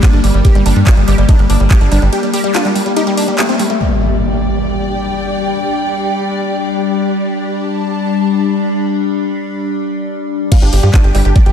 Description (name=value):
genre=psychedelic trance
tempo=143 BPM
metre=4/4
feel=straight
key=G minor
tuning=A4 = 441 Hz
part: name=supersaw stab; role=melody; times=0.0-3.8, 10.5-11.5 s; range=G3 to F5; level=-19 LUFS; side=equal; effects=phaser, cassette tape, sidechain pumping, diffuse ambient delay
part: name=evolving wavetable pad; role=sustained chords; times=0.0-11.5 s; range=G3 to D4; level=-17 LUFS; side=left 4 dB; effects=chorus, built-in reverb, phaser, sidechain pumping
part: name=woody wave-folded pluck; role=riff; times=0.0-3.8, 10.5-11.5 s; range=F3 to G4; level=-21 LUFS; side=moving between left 3 dB and right 3 dB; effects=chorus, auto-pan, sidechain pumping, diffuse ambient delay
part: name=drum and bass drum kit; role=drums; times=0.0-3.8, 10.5-11.5 s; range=crash cymbal, handclaps, hi-hat, ride cymbal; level=-22 LUFS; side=equal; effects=small room reverb
part: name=electronic kick drum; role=drums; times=0.0-1.8, 10.5-11.4 s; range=none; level=-9 LUFS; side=equal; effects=small room reverb
part: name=tight sequencer bass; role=bass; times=0.1-2.1, 10.6-11.5 s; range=G1 to G2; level=-11 LUFS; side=equal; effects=none
part: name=impact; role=sound effects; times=3.8-5.5 s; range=none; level=-20 LUFS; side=equal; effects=none
part: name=rich symphonic string section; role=texture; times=3.8-8.8 s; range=G4 to A5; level=-21 LUFS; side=right 1 dB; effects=sidechain pumping
room=moderate lush hall reverb, RT60 1.9 s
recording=dreamy mix soaked in reverb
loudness=-11 LUFS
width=side -8 dB against mid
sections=0.0-3.8 A section; 3.8-10.5 B section; 10.5-11.5 A section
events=drop 0.0-3.8, 10.5-11.5; break 2.1-3.8, 8.8-10.5; impact 3.8-5.5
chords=0.0 G5